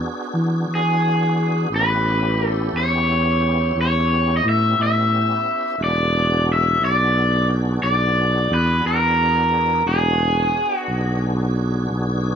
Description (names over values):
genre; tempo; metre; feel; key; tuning
slow blues; 59 BPM (dotted quarters); 12/8; straight; E mixolydian; A4 = 441 Hz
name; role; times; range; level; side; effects
tonewheel organ; sustained chords; 0.0-12.4 s; B3 to G#4; -29 LUFS; equal; slow rotary speaker, chorus vibrato
breathy tuba; bass; 0.0-12.4 s; E1 to E3; -20 LUFS; equal; none
raw garage guitar; melody; 0.8-11.2 s; G#4 to E5; -19 LUFS; equal; overdrive
room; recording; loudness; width
small room ambience; rough home demo mix; -17 LUFS; side -8 dB against mid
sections
0.0-12.4 A section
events
none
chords
0.0 E9; 1.7 A9; 5.8 E9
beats
0.69 | 1.71 2.73 3.75 4.77 | 5.79 6.81 7.83 8.85 | 9.86 10.88 11.90